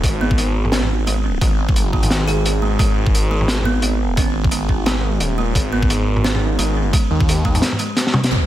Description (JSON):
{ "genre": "half-time drum and bass", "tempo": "174 BPM", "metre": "4/4", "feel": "swing 58% on 16ths, half-time", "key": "G# minor", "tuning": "A4 = 440 Hz", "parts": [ { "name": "buzzing kalimba", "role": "arpeggios", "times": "0.0-8.0 s", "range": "G#3 to G#4", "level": "-24 LUFS", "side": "right 3 dB", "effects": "digital delay" }, { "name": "phased detuned saw bass", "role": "bass", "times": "0.0-7.6 s", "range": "D#1 to D#2", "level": "-19 LUFS", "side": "equal", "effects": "phaser" }, { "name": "crunchy breakbeat drum kit", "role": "drums", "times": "0.0-8.3 s", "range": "hi-hat, snare drum, toms", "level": "-20 LUFS", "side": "equal", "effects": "none" }, { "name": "electronic kick drum", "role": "drums", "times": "0.0-7.5 s", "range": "none", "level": "-18 LUFS", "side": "equal", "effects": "overdrive" }, { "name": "impact", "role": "sound effects", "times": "8.3-8.5 s", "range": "none", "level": "-17 LUFS", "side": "equal", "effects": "none" } ], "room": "studio ambience", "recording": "none", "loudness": "-15 LUFS", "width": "side -13 dB against mid", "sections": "0.0-8.3 A section", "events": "drum fill 8.0-8.3; band accent 8.2; impact 8.3", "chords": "0.0 G#5" }